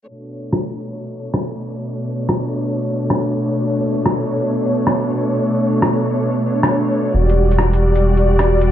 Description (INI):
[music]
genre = future garage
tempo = 136 BPM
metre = 4/4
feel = swing 67% on 16ths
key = B minor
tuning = A4 = 440 Hz
[part]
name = rich studio string section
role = sustained chords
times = 0.1-8.7 s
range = B2 to D5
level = -18 LUFS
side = equal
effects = none
[part]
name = lo-fi sampler-style drum kit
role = drums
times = 0.5-8.7 s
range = hi-hat, rim click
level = -20 LUFS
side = equal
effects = none
[part]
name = warm sub bass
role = bass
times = 7.1-8.7 s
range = E1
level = -15 LUFS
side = equal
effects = none
[sound]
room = wet lush hall reverb, RT60 2.4 s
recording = dreamy mix soaked in reverb, cassette tape, low-pass filter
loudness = -15 LUFS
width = side -11 dB against mid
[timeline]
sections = 0.1-8.7 A section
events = fade-in on string section 0.1-8.7; filter sweep 0.1-8.7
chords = 0.1 Bm9; 7.1 Em9